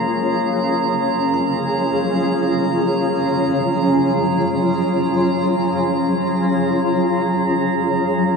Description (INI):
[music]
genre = ambient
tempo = free time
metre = none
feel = none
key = unclear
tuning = A4 = 435 Hz
[part]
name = granular cloud pad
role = sustained chords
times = 0.0-8.4 s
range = F#3 to E#5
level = -17 LUFS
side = left 1 dB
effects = built-in reverb
[part]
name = bell-like tine electric piano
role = arpeggios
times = 0.0-8.4 s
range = A#3 to A#5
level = -30 LUFS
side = left 4 dB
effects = analog chorus, diffuse ambient delay
[part]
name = drifting glass-harmonics texture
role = texture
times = 0.0-8.4 s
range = A#5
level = -24 LUFS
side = right 4 dB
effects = chorus, built-in reverb
[sound]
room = wet concert hall reverb, RT60 2.4 s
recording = none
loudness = -16 LUFS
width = side -5 dB against mid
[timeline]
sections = 0.0-8.4 A section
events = fade-out on tine electric piano 0.0-8.4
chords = 0.0 C#/F#